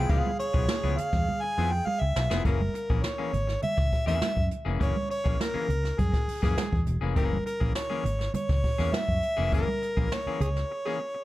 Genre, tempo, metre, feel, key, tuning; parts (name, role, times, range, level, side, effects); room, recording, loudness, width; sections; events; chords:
funk; 102 BPM; 4/4; straight; A4 = 441 Hz
warm harmonica; melody; 0.0-11.2 s; Ab4 to Ab5; -30 LUFS; equal; plate reverb, analog delay
growling tenor saxophone; second line; 0.0-2.1, 10.4-10.9 s; Ab4; -38 LUFS; right 4 dB; plate reverb, analog delay
semi-hollow electric guitar; accompaniment; 0.0-11.2 s; Fb3 to Ab4; -35 LUFS; left 7 dB; plate reverb
vintage muted fingered electric bass; bass; 0.0-10.6 s; Fb1 to Gb2; -29 LUFS; equal
jazz brush drum kit; drums; 0.1-10.6 s; hi-hat, kick drum, snare drum; -29 LUFS; equal
congas; percussion; 0.1-10.5 s; -36 LUFS; right 4 dB
light reverb; dark, warm production; -25 LUFS; side -16 dB against mid
0.0-2.5 A section; 2.5-11.2 B section
harmonica solo 0.0-2.5; drum fill 1.3-2.5; band accent 9.5-11.2; break 10.7-11.2
0.0 Db7#9; 2.5 Gb9